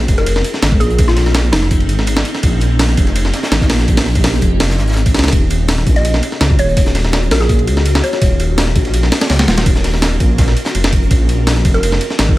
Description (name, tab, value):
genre	drum and bass, jungle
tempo	166 BPM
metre	4/4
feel	straight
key	Eb minor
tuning	A4 = 442 Hz
part	granular cloud pad	sustained chords	0.0-12.4 s	C4 to Bb4	-24 LUFS	left 1 dB	built-in reverb, vintage 12-bit sampler grit
part	dark detuned saw bass	bass	0.0-12.4 s	Eb1 to Db2	-15 LUFS	equal	none
part	breakbeat sampler-style drum kit	drums	0.0-12.4 s	hi-hat, kick drum, ride cymbal, snare drum	-14 LUFS	equal	small room ambience
part	crunchy breakbeat drum kit	drums	0.1-12.3 s	hi-hat, snare drum	-28 LUFS	left 1 dB	none
part	mallet-like synth pluck	melody	0.2-1.9, 6.0-8.4, 11.7-12.0 s	Eb4 to Eb5	-21 LUFS	equal	chorus, dub echo
room	digital ambience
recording	none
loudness	-11 LUFS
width	side -17 dB against mid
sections	0.0-5.3 A section; 5.3-12.4 A section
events	drop 0.0-5.3, 5.3-12.4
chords	0.0 Bbm11; 5.3 Ebm11; 11.1 Bbm11